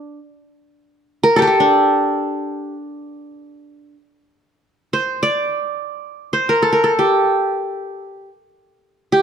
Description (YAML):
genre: Turkish makam ensemble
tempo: free time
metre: none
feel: none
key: D makam ussak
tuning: A4 = 440 Hz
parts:
  - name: qanun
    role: solo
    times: 0.0-9.2 s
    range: D4 to D5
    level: -16 LUFS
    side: equal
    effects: none
room: light reverb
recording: close, detailed microphones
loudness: -15 LUFS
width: side -8 dB against mid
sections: 0.0-4.4 A section; 4.4-9.2 A section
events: none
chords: none